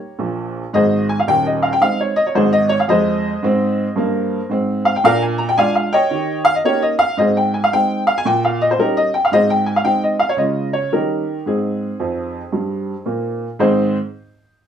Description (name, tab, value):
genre	jazz, stride piano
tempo	112 BPM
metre	4/4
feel	swing 65% on 8ths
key	Ab major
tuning	A4 = 438 Hz
part	clear upright piano	solo	0.0-14.0 s	Eb1 to Bb5	-15 LUFS	equal	none
room	wet studio reverb, RT60 0.5 s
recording	band playing live in one room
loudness	-15 LUFS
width	side -8 dB against mid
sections	0.0-13.6 A section; 13.6-14.7 B section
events	upright piano fill 12.0-13.6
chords	0.0 Eb7/Bb (rootless); 0.7 Ab; 2.9 Fm7; 5.0 Bb7; 6.1 Eb7; 7.2 Ab; 8.2 Eb7/Bb; 9.3 Ab; 10.4 Db; 10.9 Eb7; 11.5 Ab